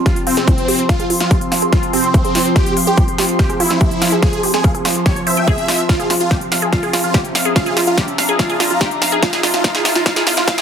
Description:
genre	psychedelic trance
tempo	144 BPM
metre	4/4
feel	straight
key	F harmonic minor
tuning	A4 = 440 Hz
part	overtone-sweeping drone	sustained chords	0.0-10.6 s	F3 to E5	-22 LUFS	equal	chorus, built-in reverb, sidechain pumping
part	riser	sound effects	4.9-10.6 s	none	-29 LUFS	equal	none
part	airy breathy pad	texture	0.0-10.6 s	C4 to C6	-25 LUFS	left 1 dB	chorus, phaser, sidechain pumping
part	dense compressed supersaw	melody	0.1-10.6 s	C4 to E5	-20 LUFS	right 1 dB	phaser, sidechain pumping, tape echo
part	wide unison pluck	riff	0.1-10.6 s	F4 to G5	-21 LUFS	right 2 dB	auto-pan, sidechain pumping, ping-pong delay
part	big-room dance drum kit	drums	0.1-10.6 s	hi-hat, snare drum	-20 LUFS	left 1 dB	overdrive, high-pass filter on snare, high-pass filter on hats
part	electronic kick drum	drums	0.1-10.6 s	none	-15 LUFS	equal	overdrive
room	moderate digital room reverb, RT60 1.2 s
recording	dense, heavily limited modern master, high-pass filter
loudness	-13 LUFS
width	side -8 dB against mid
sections	0.0-10.6 A section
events	build-up 0.0-10.6; drum fill 0.0-10.6; filter sweep on synth arpeggio sound 0.0-10.6; filter sweep 0.0-10.6; riser 4.9-10.6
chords	0.0 F5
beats	0.06 0.48 | 0.89 1.31 1.73 2.14 | 2.56 2.98 3.39 3.81 | 4.23 4.64 5.06 5.48 | 5.89 6.31 6.73 7.14 | 7.56 7.98 8.39 8.81 | 9.23 9.64 10.06 10.48

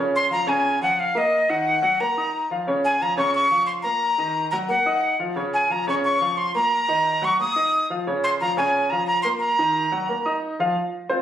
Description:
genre	latin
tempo	178 BPM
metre	4/4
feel	straight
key	unclear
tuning	A4 = 444 Hz
part	warm grand piano	accompaniment	0.0-11.2 s	Db3 to Eb6	-25 LUFS	equal	none
part	breathy bright jazz flute	melody	0.2-10.4 s	Eb5 to Eb6	-20 LUFS	equal	none
room	moderate spring reverb, RT60 1.1 s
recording	recorded on a phone in the room, studio reverb, compression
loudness	-19 LUFS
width	side -10 dB against mid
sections	0.0-10.8 A section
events	none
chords	0.0 Bbm; 1.3 Ebm; 2.7 Bbm; 4.0 Ebm; 5.4 Bbm; 6.7 Ebm; 8.1 Bbm; 9.4 Ebm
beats	0.31 0.64 0.98 | 1.32 1.66 1.99 2.33 | 2.67 3.00 3.34 3.68 | 4.02 4.36 4.69 5.03 | 5.37 5.70 6.04 6.38 | 6.72 7.05 7.39 7.73 | 8.07 8.40 8.74 9.08 | 9.41 9.75 10.09 10.43 | 10.76 11.10

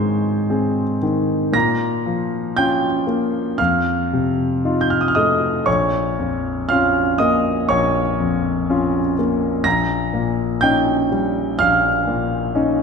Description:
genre	classical, romantic nocturne for solo piano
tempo	56-64 BPM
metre	4/4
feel	rubato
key	unclear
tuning	A4 = 440 Hz
part	clear grand piano	solo	0.0-12.8 s	Bb1 to Bb6	-16 LUFS	equal	none
room	wet recital hall reverb, RT60 1.7 s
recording	none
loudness	-16 LUFS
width	side -5 dB against mid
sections	0.0-12.8 A section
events	none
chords	0.0 Ab; 1.5 Bbm; 3.6 F7; 5.7 Bbm; 9.7 Eb7/Bb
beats	0.49 | 1.54 2.56 3.59 4.65 | 5.67 6.70 7.70 8.69 | 9.65 10.62 11.58 12.55

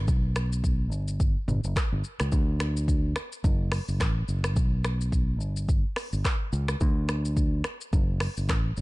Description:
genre	afrobeats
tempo	107 BPM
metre	4/4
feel	swing 58% on 16ths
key	unclear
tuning	A4 = 442 Hz
part	fingered electric bass	bass	0.0-8.8 s	F#1 to D2	-27 LUFS	equal	none
part	deep house drum kit	drums	0.1-8.8 s	finger snaps, handclaps, hi-hat, kick drum, rim click, shaker, toms	-27 LUFS	equal	none
room	little or no reverb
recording	dark, warm production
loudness	-24 LUFS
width	side -21 dB against mid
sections	0.0-8.8 A section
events	none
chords	none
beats	| 0.08 0.64 1.20 1.76 | 2.32 2.88 3.44 4.01 | 4.57 5.13 5.69 6.25 | 6.81 7.37 7.93 8.49

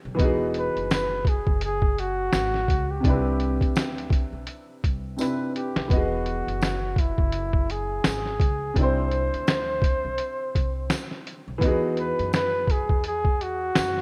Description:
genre	lo-fi hip hop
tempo	84 BPM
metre	4/4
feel	swing 58% on 16ths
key	unclear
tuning	A4 = 441 Hz
part	warm upright piano	accompaniment	0.0-14.0 s	C3 to D#5	-31 LUFS	equal	low-pass filter
part	upright bass	bass	0.1-14.0 s	E1 to F#2	-34 LUFS	equal	none
part	lo-fi sampler-style drum kit	drums	0.2-14.0 s	finger snaps, hi-hat, kick drum, snare drum	-26 LUFS	equal	vintage 12-bit sampler grit
part	breathy flugelhorn	melody	0.6-14.0 s	E4 to C5	-30 LUFS	equal	low-pass filter
part	tambourine	percussion	0.9-13.9 s	none	-46 LUFS	equal	none
room	light reverb, studio ambience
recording	rough home demo mix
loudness	-25 LUFS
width	mono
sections	0.0-14.0 A section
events	drum fill 5.2-5.9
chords	0.2 Emaj9; 3.0 Cmaj9; 5.9 Emaj9; 8.8 Cadd9; 11.6 Emaj9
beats	| 0.19 0.90 1.61 2.33 | 3.04 3.76 4.47 5.19 | 5.90 6.62 7.33 8.04 | 8.76 9.47 10.19 10.90 | 11.62 12.33 13.04 13.76

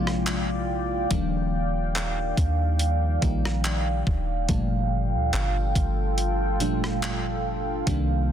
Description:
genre	contemporary R&B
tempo	71 BPM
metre	4/4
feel	swing 54% on 16ths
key	G minor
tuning	A4 = 440 Hz
part	mellow FM electric piano	accompaniment	0.0-8.3 s	Bb2 to F4	-29 LUFS	left 1 dB	chorus, phaser
part	deep dark ambient pad	sustained chords	0.0-8.3 s	Eb3 to G5	-29 LUFS	right 2 dB	chorus, built-in reverb, sidechain pumping
part	soft 808-style bass	bass	0.0-8.3 s	Eb1 to Eb2	-27 LUFS	equal	none
part	gated 80s digital drum machine	drums	0.1-8.1 s	handclaps, hi-hat, kick drum, rim click	-28 LUFS	equal	gated reverb
room	little or no reverb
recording	dense, heavily limited modern master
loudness	-23 LUFS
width	side -9 dB against mid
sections	0.0-8.3 A section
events	none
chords	0.0 Bb7; 1.1 Ebmaj7; 4.5 Gm9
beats	0.26 | 1.11 1.95 2.80 3.64 | 4.49 5.33 6.18 7.02 | 7.87

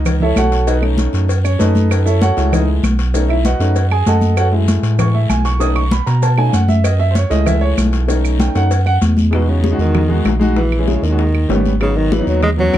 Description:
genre	Afro-Cuban jazz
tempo	194 BPM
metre	4/4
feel	straight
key	unclear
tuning	A4 = 441 Hz
part	clear concert grand piano	accompaniment	0.0-12.8 s	F#3 to D#6	-18 LUFS	right 1 dB	none
part	smooth synth bass	bass	0.0-12.8 s	G#1 to B2	-15 LUFS	equal	none
part	claves	percussion	0.1-12.8 s	none	-29 LUFS	right 8 dB	none
part	congas	percussion	0.1-12.8 s	none	-19 LUFS	left 2 dB	none
part	cowbell and bongos	percussion	0.1-12.8 s	none	-26 LUFS	left 8 dB	none
part	guiro	percussion	0.1-12.8 s	none	-34 LUFS	left 8 dB	none
part	maracas	percussion	0.1-9.3 s	none	-34 LUFS	right 8 dB	none
part	warm tenor saxophone	melody	9.3-12.8 s	B2 to G#3	-19 LUFS	equal	none
room	little or no reverb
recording	dark, warm production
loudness	-12 LUFS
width	side -12 dB against mid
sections	0.0-9.3 A section; 9.3-12.8 B section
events	grand piano solo 0.0-9.3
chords	0.0 F#m7; 0.7 B7; 4.4 F#m7; 5.6 B7; 6.8 F#m7; 8.1 B7; 9.3 Emaj9; 10.6 A#m7b5; 11.2 D#aug7; 11.8 G#m7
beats	0.06 0.37 | 0.68 0.98 1.29 1.60 | 1.91 2.22 2.52 2.83 | 3.14 3.45 3.76 4.07 | 4.37 4.68 4.99 5.30 | 5.61 5.92 6.23 6.54 | 6.85 7.16 7.46 7.77 | 8.08 8.39 8.70 9.01 | 9.32 9.63 9.94 10.25 | 10.56 10.88 11.19 11.49 | 11.81 12.12 12.43 12.74

